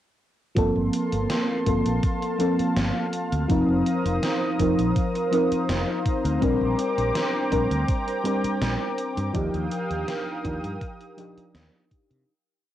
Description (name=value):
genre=vaporwave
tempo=82 BPM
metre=4/4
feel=straight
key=G minor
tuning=A4 = 444 Hz
part: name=mellow FM electric piano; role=accompaniment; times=0.6-12.3 s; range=F3 to Bb4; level=-24 LUFS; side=equal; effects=phaser, analog chorus, cassette tape, tape echo
part: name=lush unison pad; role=sustained chords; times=0.6-12.2 s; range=Bb3 to Eb6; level=-30 LUFS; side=right 1 dB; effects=chorus, vintage 12-bit sampler grit, cassette tape
part: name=mellow fretless electric bass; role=bass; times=0.6-12.2 s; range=F1 to C3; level=-28 LUFS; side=equal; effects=none
part: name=electronic kick drum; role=drums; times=0.6-12.1 s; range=none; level=-26 LUFS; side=equal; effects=none
part: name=gated 80s digital drum machine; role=drums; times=0.6-12.2 s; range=hi-hat, snare drum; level=-32 LUFS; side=equal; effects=gated reverb, gated reverb snare
room=moderate booth ambience, RT60 0.2 s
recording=home recording on cassette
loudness=-22 LUFS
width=side -12 dB against mid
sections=0.6-12.3 groove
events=fade-out 8.4-12.3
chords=0.6 Gm11; 3.5 F7sus4; 6.4 Bb69; 9.3 Ebmaj9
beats=| 0.57 1.30 2.03 2.76 | 3.50 4.23 4.96 5.69 | 6.42 7.15 7.88 8.62 | 9.35 10.08 10.81 11.54